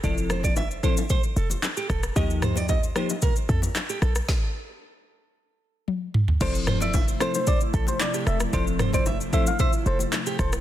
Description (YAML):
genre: afrobeats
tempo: 113 BPM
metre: 4/4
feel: straight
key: F major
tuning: A4 = 443 Hz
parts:
  - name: bell-like FM electric piano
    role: accompaniment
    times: 0.0-3.1, 6.4-9.5 s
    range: F3 to A4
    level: -30 LUFS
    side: left 4 dB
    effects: chorus
  - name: nylon-string guitar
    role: riff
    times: 0.0-10.5 s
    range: G4 to E5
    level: -32 LUFS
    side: right 7 dB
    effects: digital delay
  - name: short 808-style bass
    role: bass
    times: 0.0-10.6 s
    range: E1 to F2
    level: -27 LUFS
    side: equal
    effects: none
  - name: afro-pop drum kit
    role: drums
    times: 0.0-10.6 s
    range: crash cymbal, handclaps, kick drum, rim click, shaker, snare drum, toms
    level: -24 LUFS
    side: equal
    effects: none
  - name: congas and bongos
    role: percussion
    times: 0.0-10.2 s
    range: none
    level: -34 LUFS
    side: left 3 dB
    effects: none
  - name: soft struck synth lead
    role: melody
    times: 6.4-10.5 s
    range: C5 to F5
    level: -29 LUFS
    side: left 1 dB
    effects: chorus, digital delay
  - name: airy breathy pad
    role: sustained chords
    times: 6.4-10.6 s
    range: C3 to E4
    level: -32 LUFS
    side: left 1 dB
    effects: chorus
room: light reverb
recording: dense, heavily limited modern master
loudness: -22 LUFS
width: side -12 dB against mid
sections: 0.0-6.4 A section; 6.4-10.6 B section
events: stop 4.3-6.4; drum fill 5.9-6.4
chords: 0.0 Fmaj7; 2.2 Ebadd9; 4.3 N.C.; 6.4 Fmaj7